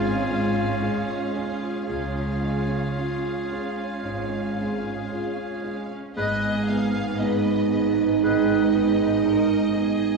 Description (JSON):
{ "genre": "cinematic, emotional film score for orchestra", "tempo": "57 BPM", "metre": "4/4", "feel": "rubato", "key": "G# dorian", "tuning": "A4 = 440 Hz", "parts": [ { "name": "warm symphonic violin section", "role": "melody", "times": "0.0-10.2 s", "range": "D#5 to E#5", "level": "-34 LUFS", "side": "equal", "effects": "none" }, { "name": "clear oboe", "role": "second line", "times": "0.0-8.6 s", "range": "G#4 to B4", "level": "-34 LUFS", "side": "left 1 dB", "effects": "none" }, { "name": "warm clarinet", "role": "second line", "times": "0.0-8.6 s", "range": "E#4 to G#4", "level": "-34 LUFS", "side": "left 2 dB", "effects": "none" }, { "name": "warm symphonic violin section", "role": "second line", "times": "0.0-10.2 s", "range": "G#3 to B4", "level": "-35 LUFS", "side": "left 4 dB", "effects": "none" }, { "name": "warm concert grand piano", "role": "accompaniment", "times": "0.0-10.2 s", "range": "C#2 to G#4", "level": "-31 LUFS", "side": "right 1 dB", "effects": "none" }, { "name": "warm symphonic viola section", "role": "accompaniment", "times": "0.0-10.2 s", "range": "B3 to D#4", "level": "-32 LUFS", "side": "right 4 dB", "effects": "none" }, { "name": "mellow French horn section", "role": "sustained chords", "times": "0.0-10.2 s", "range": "G#3 to E#4", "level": "-26 LUFS", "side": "right 6 dB", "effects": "none" }, { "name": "rich symphonic double bass section", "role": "bass", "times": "0.0-10.2 s", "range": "G#1 to C#2", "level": "-32 LUFS", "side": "right 1 dB", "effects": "none" }, { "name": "warm symphonic cello section", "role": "bass", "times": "0.0-10.2 s", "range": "G#2 to C#3", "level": "-29 LUFS", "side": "right 1 dB", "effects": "none" }, { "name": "silver concert flute", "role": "second line", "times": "6.2-8.7 s", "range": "D#5", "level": "-35 LUFS", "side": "left 4 dB", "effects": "none" } ], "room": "wet recital hall reverb, RT60 1.4 s", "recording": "heard from further back in the room, vinyl crackle, small room reverb", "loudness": "-22 LUFS", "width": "side -3 dB against mid", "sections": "0.0-6.2 A section; 6.2-10.2 B section", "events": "none", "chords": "0.0 C#; 6.2 G#m" }